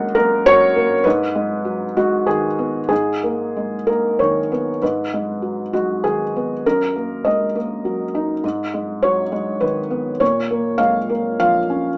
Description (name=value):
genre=neoclassical minimalist piano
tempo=100 BPM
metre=3/4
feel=rubato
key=G# dorian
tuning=A4 = 440 Hz
part: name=felt-muted upright piano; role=solo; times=0.0-12.0 s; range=F#2 to F#5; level=-19 LUFS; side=equal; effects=none
room=moderate studio reverb, RT60 0.6 s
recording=rough home demo mix, small speaker sound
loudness=-19 LUFS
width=mono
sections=0.0-4.8 A section; 4.8-12.0 B section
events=none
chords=0.0 F#add9; 1.0 G#m; 2.9 G#madd9; 4.8 G#m; 6.6 D#m/F#; 8.4 G#m; 10.2 A#m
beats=0.45 | 1.04 1.65 2.26 | 2.90 3.54 4.18 | 4.81 5.42 6.03 | 6.64 7.24 7.84 | 8.43 9.02 9.62 | 10.21 10.80 11.40